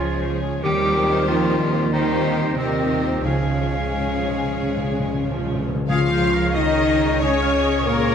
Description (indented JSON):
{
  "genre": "cinematic, heroic adventure film score",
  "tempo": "92 BPM (dotted quarters)",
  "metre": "12/8",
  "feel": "straight",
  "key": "Db lydian",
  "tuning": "A4 = 440 Hz",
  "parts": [
    { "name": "rich symphonic violin section", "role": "melody", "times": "0.0-8.1 s", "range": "Bb4 to F5", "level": "-32 LUFS", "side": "left 3 dB", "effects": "none" },
    { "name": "hollow concert flute", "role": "second line", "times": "0.0-8.1 s", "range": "Bb4 to F5", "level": "-30 LUFS", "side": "left 2 dB", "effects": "none" },
    { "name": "warm clarinet", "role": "second line", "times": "0.0-8.1 s", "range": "C4 to F5", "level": "-26 LUFS", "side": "left 1 dB", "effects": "none" },
    { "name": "warm symphonic violin section", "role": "second line", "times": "0.0-8.1 s", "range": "G4 to F5", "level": "-31 LUFS", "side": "left 2 dB", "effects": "none" },
    { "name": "warm symphonic viola section", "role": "accompaniment", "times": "0.0-8.1 s", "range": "Eb3 to Db5", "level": "-28 LUFS", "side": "right 2 dB", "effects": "none" },
    { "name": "dark trombone section", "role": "sustained chords", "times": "0.0-8.1 s", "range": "Ab2 to Db4", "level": "-32 LUFS", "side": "right 3 dB", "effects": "none" },
    { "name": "mellow French horn section", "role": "sustained chords", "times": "0.0-8.1 s", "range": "G3 to F4", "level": "-25 LUFS", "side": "left 4 dB", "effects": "none" },
    { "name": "concert harp", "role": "arpeggios", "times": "0.0-8.1 s", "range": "Db3 to Db5", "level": "-31 LUFS", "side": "left 6 dB", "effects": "none" },
    { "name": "rich symphonic cello section", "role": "bass", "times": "0.0-8.1 s", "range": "Bb2 to G3", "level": "-26 LUFS", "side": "right 3 dB", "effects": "none" },
    { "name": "rich symphonic double bass section", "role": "bass", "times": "0.0-8.1 s", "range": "Db2 to Eb2", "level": "-26 LUFS", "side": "right 3 dB", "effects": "none" },
    { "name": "timpani", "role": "percussion", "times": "3.2-6.5 s", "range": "Db3", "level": "-28 LUFS", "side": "left 2 dB", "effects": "none" },
    { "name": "warm oboe", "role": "second line", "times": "5.9-8.1 s", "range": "Ab4 to F5", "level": "-29 LUFS", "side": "equal", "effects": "none" }
  ],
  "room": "wet scoring stage reverb, RT60 1.7 s",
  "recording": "none",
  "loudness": "-18 LUFS",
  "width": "side -8 dB against mid",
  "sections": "0.0-5.9 A section; 5.9-8.1 B section",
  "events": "timpani fill 3.2-5.9",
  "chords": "0.0 Db; 0.6 Eb6; 3.2 Db",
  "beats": "| 0.64 1.28 1.93 2.58 | 3.24 3.91 4.57 5.24 | 5.90 6.55 7.20 7.86"
}